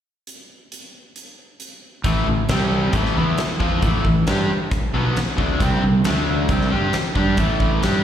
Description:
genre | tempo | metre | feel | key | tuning
classic rock | 135 BPM | 4/4 | straight | A minor | A4 = 436 Hz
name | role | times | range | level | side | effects
huge arena drum kit | drums | 0.3-7.9 s | hi-hat, kick drum, snare drum | -24 LUFS | equal | none
cranked stack guitar | riff | 2.0-8.0 s | A2 to G4 | -22 LUFS | left 5 dB | overdrive, slapback echo
crunchy overdriven guitar | riff | 2.0-8.0 s | A2 to G4 | -24 LUFS | right 10 dB | none
fuzz fingered electric bass | bass | 2.0-8.0 s | A1 to G2 | -22 LUFS | equal | overdrive
room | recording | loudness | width
light reverb, small room ambience | live gig heard through the venue's PA, recital hall reverb | -17 LUFS | side -10 dB against mid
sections
0.3-2.1 A section; 2.1-8.0 B section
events
none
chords
0.3 N.C.; 2.1 A5; 2.5 C5; 2.9 Am; 5.6 C5; 6.1 D5; 6.5 C5; 7.4 A5

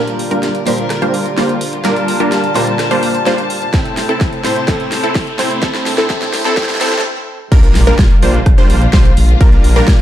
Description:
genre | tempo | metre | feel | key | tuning
EDM, festival progressive house | 127 BPM | 4/4 | straight | unclear | A4 = 440 Hz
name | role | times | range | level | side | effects
picked swing-style acoustic guitar | accompaniment | 0.0-7.0 s | A2 to C5 | -21 LUFS | right 2 dB | sidechain pumping, digital delay
dark chamber string section | sustained chords | 0.0-10.0 s | C3 to A5 | -23 LUFS | left 2 dB | sidechain pumping
wide unison pluck | arpeggios | 0.0-10.0 s | A4 to C5 | -22 LUFS | equal | sidechain pumping, digital delay
supersaw stab | riff | 0.0-10.0 s | G3 to C5 | -18 LUFS | equal | sidechain pumping, low-pass filter, digital delay
riser and impact | sound effects | 0.0-9.4 s | none | -26 LUFS | equal | none
big-room dance drum kit | drums | 0.1-10.0 s | crash cymbal, hi-hat, rim click, snare drum | -21 LUFS | equal | high-pass filter on hats, high-pass filter on snare, high-pass filter on cymbals, high-pass filter on room
electronic kick drum | drums | 3.7-10.0 s | none | -10 LUFS | equal | none
detuned saw bass | bass | 7.5-10.0 s | Bb1 to Bb2 | -13 LUFS | equal | sidechain pumping
room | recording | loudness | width
light reverb, digital ambience | dark, warm production, high-pass filter | -11 LUFS | side -12 dB against mid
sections
0.0-7.5 A section; 7.5-10.0 B section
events
build-up 0.0-7.5; drum fill 0.0-7.0; riser 0.0-7.0; filter sweep on supersaw synth 0.0-7.5; filter sweep 0.0-7.5; stop 7.0-7.5; drop 7.5-10.0; impact 7.5-9.4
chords
0.0 Bb6; 3.7 Am; 7.5 Bb6

